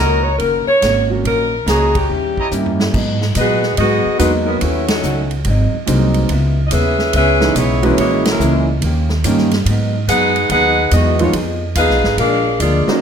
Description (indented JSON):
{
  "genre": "jazz, big band swing",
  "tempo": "143 BPM",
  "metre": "4/4",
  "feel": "swing 65% on 8ths",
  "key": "G# minor",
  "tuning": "A4 = 439 Hz",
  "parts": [
    { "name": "clear saxophone section", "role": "melody", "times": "0.0-13.0 s", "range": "F#3 to F#5", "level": "-16 LUFS", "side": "left 1 dB", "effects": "none" },
    { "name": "vintage hollow-body jazz guitar", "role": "accompaniment", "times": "0.0-12.9 s", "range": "G#2 to Ab4", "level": "-23 LUFS", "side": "left 1 dB", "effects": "none" },
    { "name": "clear trumpet section", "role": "stabs", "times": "0.0-2.5 s", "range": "Fb4 to Bb5", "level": "-22 LUFS", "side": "right 4 dB", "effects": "none" },
    { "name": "upright bass", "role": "bass", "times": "0.0-12.9 s", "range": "Gb1 to A#2", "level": "-18 LUFS", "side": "equal", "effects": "none" },
    { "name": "swinging big-band drum kit", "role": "drums", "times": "0.4-12.9 s", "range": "crash cymbal, hi-hat, kick drum, ride cymbal, snare drum, toms", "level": "-23 LUFS", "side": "right 1 dB", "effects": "none" },
    { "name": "clear concert grand piano", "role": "accompaniment", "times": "1.1-13.0 s", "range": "D#3 to Gb4", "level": "-19 LUFS", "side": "right 2 dB", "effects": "none" }
  ],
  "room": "moderate large studio reverb, RT60 1.2 s",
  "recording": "none",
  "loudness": "-13 LUFS",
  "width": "side -7 dB against mid",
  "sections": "0.0-2.9 A section; 2.9-13.0 B section",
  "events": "band accent 1.9, 4.8, 8.2; drum fill 2.5-2.9",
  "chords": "0.0 Ebm7; 2.1 Eb7b9; 2.9 G#m7; 4.6 D#m7b5; 5.5 G#7; 6.3 C#m7; 8.0 A#m7b5; 8.8 D#7; 9.7 G#m7; 11.3 Fm7b5; 12.2 A#7",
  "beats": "0.40 0.82 | 1.24 1.67 2.09 2.51 | 2.93 3.35 3.77 4.19 | 4.61 5.03 5.45 5.87 | 6.29 6.71 7.13 7.55 | 7.97 8.39 8.81 9.23 | 9.65 10.07 10.49 10.91 | 11.34 11.76 12.18 12.60"
}